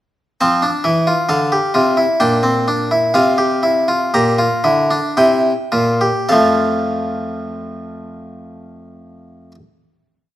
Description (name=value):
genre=classical, baroque-style 3-part fugue for harpsichord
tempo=52-68 BPM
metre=3/4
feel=straight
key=F major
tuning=A4 = 440 Hz
part: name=harpsichord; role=solo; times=0.4-9.5 s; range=F2 to Bb5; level=-14 LUFS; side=equal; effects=none
room=moderate recital hall reverb, RT60 1.4 s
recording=close, detailed microphones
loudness=-13 LUFS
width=side -13 dB against mid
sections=0.4-6.3 exposition; 6.3-9.7 final chord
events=slowing down 0.4-8.0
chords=0.4 F; 2.2 Gm/Bb; 3.1 C7sus4; 5.2 C7; 6.3 F